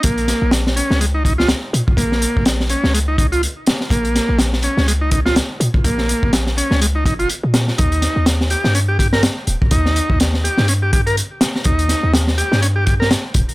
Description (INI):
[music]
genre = breakbeat, breaks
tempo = 124 BPM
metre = 4/4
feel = swing 57% on 16ths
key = Bb dorian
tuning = A4 = 441 Hz
[part]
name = combo organ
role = riff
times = 0.0-13.1 s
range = Ab3 to Bb4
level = -20 LUFS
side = equal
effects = tube saturation, tape echo
[part]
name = warm 808-style bass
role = bass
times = 0.0-13.4 s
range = Eb1 to Bb2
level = -18 LUFS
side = equal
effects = high-pass filter
[part]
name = crunchy breakbeat drum kit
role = drums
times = 0.0-13.5 s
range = hi-hat, kick drum, snare drum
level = -17 LUFS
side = equal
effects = none
[sound]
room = little or no reverb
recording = high-pass filter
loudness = -14 LUFS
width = side -19 dB against mid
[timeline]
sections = 0.0-13.5 A section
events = drop 0.0-13.5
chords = 0.0 Bbm; 7.8 Eb